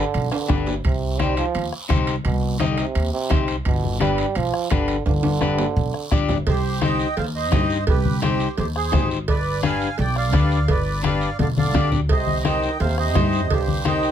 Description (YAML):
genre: latin, cumbia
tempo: 171 BPM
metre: 4/4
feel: straight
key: C harmonic minor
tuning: A4 = 440 Hz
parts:
  - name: bright trombone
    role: second line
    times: 0.0-6.1, 11.4-14.1 s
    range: G2 to G3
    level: -26 LUFS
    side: right 6 dB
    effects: none
  - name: electric guitar at the edge of break-up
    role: accompaniment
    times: 0.0-14.1 s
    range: D4 to Eb5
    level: -24 LUFS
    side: left 7 dB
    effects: none
  - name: upright bass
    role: bass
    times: 0.1-14.1 s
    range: G1 to G2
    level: -23 LUFS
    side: equal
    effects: none
  - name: guiro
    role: percussion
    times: 0.1-14.1 s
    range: none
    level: -36 LUFS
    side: right 3 dB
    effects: none
  - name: timbales and cowbell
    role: percussion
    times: 0.1-14.0 s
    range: none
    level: -30 LUFS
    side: right 6 dB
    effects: none
  - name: bombo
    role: percussion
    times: 0.3-14.0 s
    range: none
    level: -23 LUFS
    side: right 1 dB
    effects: none
  - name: congas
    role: percussion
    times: 0.5-14.0 s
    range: none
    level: -25 LUFS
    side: left 4 dB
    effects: none
  - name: accordion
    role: melody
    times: 6.5-14.1 s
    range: G4 to Ab5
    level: -25 LUFS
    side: right 4 dB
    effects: light tremolo tuning
room: light reverb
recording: close, detailed microphones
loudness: -18 LUFS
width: side -9 dB against mid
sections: 0.0-6.5 A section; 6.5-14.1 B section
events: trombone solo 0.0-6.5; drum fill 0.3-0.8, 5.1-6.5, 11.4-12.1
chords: 0.0 G; 0.8 Cm; 3.7 G; 6.5 Cm; 9.3 G7; 12.1 Cm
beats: 0.14 0.49 | 0.84 1.20 1.55 1.90 | 2.25 2.60 2.95 3.31 | 3.66 4.01 4.36 4.71 | 5.06 5.41 5.76 6.12 | 6.47 6.82 7.17 7.52 | 7.87 8.23 8.58 8.93 | 9.28 9.63 9.98 10.34 | 10.69 11.04 11.39 11.74 | 12.10 12.45 12.80 13.15 | 13.50 13.86